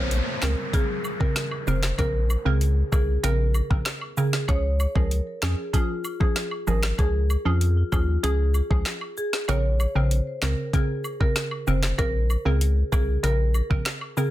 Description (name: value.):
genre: dancehall.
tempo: 96 BPM.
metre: 4/4.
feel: straight.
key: Bb minor.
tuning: A4 = 440 Hz.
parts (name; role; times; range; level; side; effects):
marimba with medium mallets; melody; 0.0-14.3 s; F4 to Db5; -30 LUFS; equal; ping-pong delay.
hollow square pluck; accompaniment; 0.0-14.3 s; Db3 to Bb4; -28 LUFS; right 2 dB; chorus.
saturated sub bass; bass; 0.0-13.8 s; F1 to F2; -22 LUFS; equal; none.
downlifter; sound effects; 0.0-4.5 s; none; -34 LUFS; left 1 dB; none.
island pop drum kit; drums; 0.1-14.0 s; handclaps, hi-hat, kick drum, snare drum; -25 LUFS; equal; none.
cabasa and woodblock; percussion; 0.4-14.3 s; none; -36 LUFS; right 1 dB; none.
room: little or no reverb.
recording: dense, heavily limited modern master.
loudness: -21 LUFS.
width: side -14 dB against mid.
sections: 0.0-14.3 A section.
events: kick muted 9.5-10.7.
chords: 0.0 Bbmadd9; 4.5 Db; 9.5 Bbmadd9.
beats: 0.11 0.74 1.36 | 1.99 2.61 3.24 3.86 | 4.49 5.11 5.74 6.36 | 6.99 7.61 8.24 8.86 | 9.49 10.11 10.74 11.36 | 11.99 12.61 13.24 13.86.